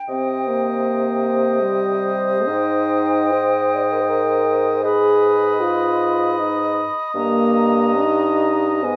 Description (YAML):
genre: classical, slow romantic movement for wind quintet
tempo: 76 BPM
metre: 3/4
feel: uneven beats, rubato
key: unclear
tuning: A4 = 440 Hz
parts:
  - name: hollow silver concert flute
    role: melody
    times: 0.0-9.0 s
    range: G5 to Cb6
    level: -29 LUFS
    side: equal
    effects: none
  - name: warm oboe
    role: second line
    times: 0.1-9.0 s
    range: Eb5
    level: -26 LUFS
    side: equal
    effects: none
  - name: clear clarinet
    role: accompaniment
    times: 0.1-9.0 s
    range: Cb5 to Eb5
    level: -30 LUFS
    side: equal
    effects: none
  - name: warm French horn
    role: accompaniment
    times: 0.1-9.0 s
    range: G3 to D5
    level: -22 LUFS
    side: equal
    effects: none
  - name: clear bassoon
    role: bass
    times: 0.1-9.0 s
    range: G2 to C3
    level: -24 LUFS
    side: equal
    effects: none
room: moderate large studio reverb, RT60 0.7 s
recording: none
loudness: -19 LUFS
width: mono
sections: 0.0-9.0 A section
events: none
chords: 0.1 Cm; 2.5 Abmaj7; 4.9 Abm; 7.2 Eb/G